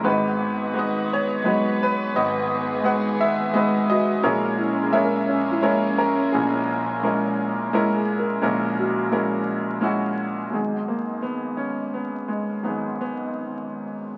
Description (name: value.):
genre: acoustic folk-pop ballad.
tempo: 86 BPM.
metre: 3/4.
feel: straight.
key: G# minor.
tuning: A4 = 444 Hz.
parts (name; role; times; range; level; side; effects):
bright upright piano; melody; 0.0-14.2 s; G#1 to F#5; -24 LUFS; equal; none.
warm chamber string section; sustained chords; 0.0-8.4 s; G#3 to B4; -31 LUFS; equal; none.
felt-muted upright piano; arpeggios; 0.0-10.8 s; E3 to A#4; -33 LUFS; equal; none.
upright bass; bass; 0.0-10.5 s; G#1 to A#1; -42 LUFS; equal; none.
room: moderate small room reverb, RT60 0.5 s.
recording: very old 78 rpm record, vinyl crackle, nothing above 7.8 kHz.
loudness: -23 LUFS.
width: mono.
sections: 0.0-8.4 A section; 8.4-10.5 B section; 10.5-14.2 C section.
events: none.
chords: 0.0 G#m7; 4.2 A#m7b5; 10.5 G#m7.